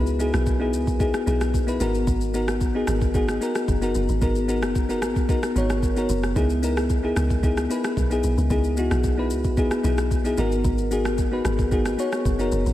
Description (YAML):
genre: amapiano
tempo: 112 BPM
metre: 4/4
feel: straight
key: C# dorian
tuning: A4 = 439 Hz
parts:
  - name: bell-like FM electric piano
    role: accompaniment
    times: 0.0-12.7 s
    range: B3 to C#5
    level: -23 LUFS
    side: left 2 dB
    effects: chorus
  - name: deep log drum bass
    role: bass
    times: 0.0-12.7 s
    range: F#1 to C#2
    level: -25 LUFS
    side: equal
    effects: none
  - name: smooth R&B drum kit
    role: drums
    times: 0.1-12.7 s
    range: kick drum, rim click, shaker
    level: -26 LUFS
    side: equal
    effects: none
room: moderate lush hall reverb, RT60 1.9 s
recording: dreamy mix soaked in reverb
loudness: -20 LUFS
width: side -14 dB against mid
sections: 0.0-12.7 A section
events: none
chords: 0.0 C#m9; 1.8 G#m9; 6.4 C#m9; 10.4 G#m9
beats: 0.47 1.00 1.54 | 2.08 2.61 3.15 3.68 | 4.22 4.75 5.29 5.83 | 6.36 6.90 7.43 7.97 | 8.51 9.04 9.58 10.11 | 10.65 11.18 11.72 12.26